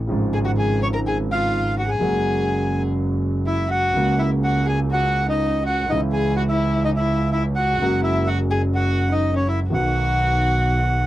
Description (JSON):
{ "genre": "tango", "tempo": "124 BPM", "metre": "4/4", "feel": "rubato", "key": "unclear", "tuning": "A4 = 440 Hz", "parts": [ { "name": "warm concert grand piano", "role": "accompaniment", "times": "0.1-11.1 s", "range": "G#1 to F#4", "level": "-24 LUFS", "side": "right 1 dB", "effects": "none" }, { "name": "clear double bass", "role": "bass", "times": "0.1-11.1 s", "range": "F#1 to C#2", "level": "-23 LUFS", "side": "right 1 dB", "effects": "none" }, { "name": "bandoneon", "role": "melody", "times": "0.3-11.1 s", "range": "C#5 to C#6", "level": "-24 LUFS", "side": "right 1 dB", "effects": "none" }, { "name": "warm violin", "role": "second line", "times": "0.3-11.1 s", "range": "C#4 to C#5", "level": "-26 LUFS", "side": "left 3 dB", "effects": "none" } ], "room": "little or no reverb", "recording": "dry, close 1970s-style studio recording", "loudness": "-18 LUFS", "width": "side -14 dB against mid", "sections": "0.0-11.1 A section", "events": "none", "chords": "0.1 C#/G#; 2.0 F#add9; 5.9 C#m; 7.8 F#add9; 9.7 B" }